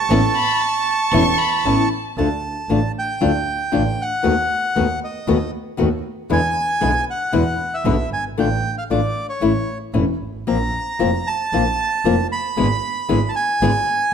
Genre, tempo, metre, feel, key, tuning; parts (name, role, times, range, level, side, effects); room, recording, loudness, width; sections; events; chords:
tango; 116 BPM; 4/4; rubato; A4 = 440 Hz
bandoneon; melody; 0.0-14.1 s; C#5 to C#6; -21 LUFS; right 3 dB
nylon-string guitar; accompaniment; 0.1-13.7 s; B2 to G#4; -21 LUFS; left 6 dB
warm studio string section; stabs; 0.1-1.9 s; B3 to A4; -28 LUFS; right 5 dB
clear double bass; bass; 0.1-13.8 s; E1 to E2; -23 LUFS; right 3 dB
warm violin; second line; 0.4-2.2 s; A5 to C#6; -22 LUFS; left 6 dB
light reverb; -17 LUFS; side -7 dB against mid
0.0-2.2 A section; 2.2-14.1 B section
0.1 Aadd9; 2.2 Dm; 4.3 B7/D#; 6.3 E7; 8.4 Dm/A; 9.4 A; 10.5 Bbsus2; 12.6 E7/G#